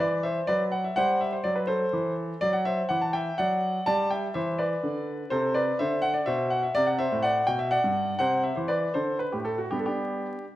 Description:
classical-period piano sonatina; 83 BPM (dotted quarters); 6/8; straight; G major; A4 = 444 Hz
clear concert grand piano; solo; 0.0-10.4 s; G2 to A5; -24 LUFS; equal
wet recital hall reverb, RT60 1.3 s; vinyl crackle; -24 LUFS; side -14 dB against mid
0.0-10.6 A section
0.0 G (rootless); 1.0 Am7; 2.4 D; 3.9 G; 5.3 Am/C; 6.8 D5/C; 7.5 G/B; 8.2 Cmaj9#11; 8.9 D5; 9.7 G
0.24 | 0.97 1.69 | 2.42 3.14 | 3.87 4.59 | 5.31 6.03 | 6.75 7.47 | 8.19 8.94 | 9.70

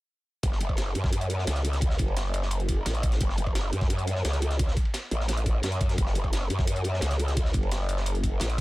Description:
dark technical drum and bass; 173 BPM; 4/4; straight; F# minor; A4 = 444 Hz
growl bass; bass; 0.4-8.6 s; F#1 to F#2; -27 LUFS; equal; chorus, tube saturation
crunchy breakbeat drum kit; drums; 0.4-8.6 s; ride cymbal, snare drum; -37 LUFS; equal; high-pass filter on cymbals, studio ambience, high-pass filter on snare, high-pass filter on room
electronic hi-hat; drums; 0.4-8.6 s; -38 LUFS; equal; overdrive, studio ambience
electronic kick drum; drums; 0.4-8.6 s; -27 LUFS; equal; overdrive, studio ambience
small room ambience; -25 LUFS; side -19 dB against mid
0.4-8.6 A section
| 0.43 0.78 1.12 1.47 | 1.82 2.17 2.51 2.86 | 3.21 3.55 3.90 4.25 | 4.59 4.94 5.29 5.63 | 5.98 6.33 6.67 7.02 | 7.37 7.71 8.06 8.41

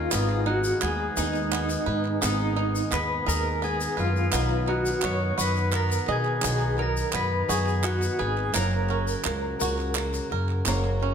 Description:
indie folk with a building arrangement; 57 BPM (dotted quarters); 6/8; straight; A4 = 438 Hz
electric guitar through a small old amp; melody; 0.0-11.1 s; Eb4 to Db5; -29 LUFS; equal; tremolo, digital delay
glockenspiel with soft plastic mallets; second line; 0.0-11.1 s; Eb6 to Db7; -34 LUFS; left 2 dB
picked twelve-string acoustic guitar; accompaniment; 0.0-11.1 s; Ab2 to Cb5; -34 LUFS; left 8 dB
warm upright piano; accompaniment; 0.0-11.1 s; Gb1 to Eb5; -38 LUFS; right 3 dB
mellow brass ensemble; sustained chords; 0.0-11.1 s; Db3 to Cb4; -37 LUFS; equal
bluegrass banjo; arpeggios; 0.0-11.1 s; Bb3 to Eb5; -33 LUFS; right 8 dB
upright bass; bass; 0.0-11.1 s; Gb1 to Cb3; -28 LUFS; equal
group handclap; percussion; 0.1-10.9 s; -34 LUFS; right 7 dB
tube shaker; percussion; 0.1-10.8 s; -34 LUFS; left 5 dB
moderate large studio reverb, RT60 1.3 s; -23 LUFS; side -7 dB against mid
0.0-11.1 A section
0.1 Abm; 8.5 Gb
| 0.12 1.17 | 2.22 3.27 | 4.33 5.38 | 6.43 7.49 | 8.54 9.60 | 10.65

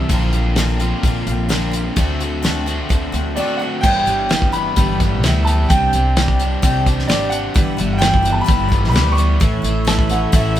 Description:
folk rock and heartland rock; 129 BPM; 4/4; straight; A4 = 437 Hz
picked twelve-string acoustic guitar; accompaniment; 0.0-10.6 s; G2 to G4; -24 LUFS; left 1 dB
crunchy overdriven guitar; riff; 0.0-10.6 s; G2 to G4; -24 LUFS; equal
upright bass; bass; 0.1-10.6 s; G1 to D2; -19 LUFS; equal
damped 70s drum kit; drums; 0.1-10.6 s; crash cymbal, hi-hat, kick drum, snare drum; -18 LUFS; equal
bright concert grand piano; melody; 3.4-10.6 s; D5 to D6; -20 LUFS; equal
hand-pumped harmonium; sustained chords; 3.9-10.6 s; D4 to E5; -30 LUFS; right 2 dB
warm upright piano; second line; 9.9-10.6 s; E5 to A5; -23 LUFS; right 3 dB
light reverb; band playing live in one room; -14 LUFS; side -12 dB against mid
0.0-3.8 A section; 3.8-10.6 B section
0.1 Bbadd9; 2.0 D7; 3.8 G6; 5.7 Csus2; 7.6 G6; 9.4 A
| 0.09 0.56 1.03 1.50 | 1.96 2.43 2.90 3.37 | 3.83 4.30 4.77 5.23 | 5.70 6.16 6.63 7.09 | 7.55 8.02 8.48 8.95 | 9.41 9.88 10.34

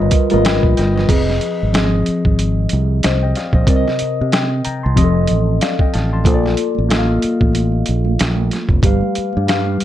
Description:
R&B, neo-soul; 93 BPM; 4/4; swing 59% on 16ths; A4 = 441 Hz
reed electric piano; accompaniment; 0.0-9.8 s; C3 to C6; -18 LUFS; left 2 dB; phaser, plate reverb
fingered electric bass; bass; 0.0-9.8 s; F1 to C3; -17 LUFS; right 1 dB
boom bap sampler-style drum kit; drums; 0.1-9.8 s; crash cymbal, hi-hat, kick drum, snare drum; -17 LUFS; equal
congas; percussion; 0.3-1.1, 6.2-9.8 s; -28 LUFS; right 9 dB
light reverb; dark, warm production; -13 LUFS; side -12 dB against mid
0.0-1.1 A section; 1.1-9.8 B section
0.0 G7alt; 1.1 Fm7; 3.7 Cm7; 5.0 F7; 6.2 Bbmaj7; 8.8 G7
0.44 | 1.09 1.73 2.38 3.02 | 3.67 4.31 4.96 5.60 | 6.25 6.89 7.54 8.19 | 8.83 9.47

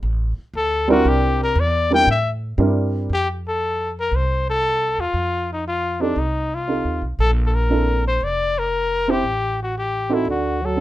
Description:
jazz, small-group swing and bop; 117 BPM; 4/4; swing 69% on 8ths; F major; A4 = 440 Hz
upright bass; bass; 0.0-10.8 s; F1 to A2; -23 LUFS; equal
clear trumpet; melody; 0.6-10.8 s; D4 to G5; -21 LUFS; left 2 dB
dark upright piano; accompaniment; 0.9-10.8 s; G3 to C5; -20 LUFS; right 2 dB
breathy trombone; second line; 10.3-10.8 s; D3 to F#3; -24 LUFS; right 4 dB
light reverb; rough home demo mix; -18 LUFS; side -15 dB against mid
0.0-3.1 A section; 3.1-10.8 B section
trumpet solo 0.0-3.1
0.0 Gmadd9; 1.1 C7; 3.1 F; 5.1 F9; 7.2 Bbmaj9#11; 9.2 Am; 10.3 D
0.03 0.54 | 1.05 1.56 2.07 2.58 | 3.09 3.60 4.12 4.63 | 5.14 5.65 6.16 6.67 | 7.19 7.70 8.21 8.72 | 9.23 9.74 10.26 10.77

